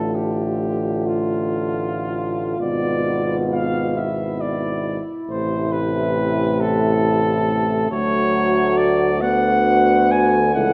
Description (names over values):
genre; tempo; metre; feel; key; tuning
classical, hymn-like piece for brass band; 45 BPM (dotted quarters); 6/8; uneven beats, rubato; A minor; A4 = 440 Hz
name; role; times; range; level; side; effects
warm flugelhorn; melody; 0.0-10.7 s; F4 to G#5; -24 LUFS; equal; none
dark French horn section; second line; 0.0-10.7 s; E4 to A4; -27 LUFS; equal; none
clear trombone; accompaniment; 0.0-10.7 s; B2 to F#3; -29 LUFS; equal; none
warm euphonium; accompaniment; 0.0-10.7 s; A3 to B3; -29 LUFS; equal; none
warm tuba; bass; 0.0-10.7 s; G#1 to D2; -26 LUFS; equal; none
room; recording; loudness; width
moderate scoring stage reverb, RT60 1.9 s; none; -20 LUFS; mono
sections
0.0-10.7 A section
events
none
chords
0.0 Dm/A; 2.6 E7/G#; 5.3 Am; 7.9 Dmaj7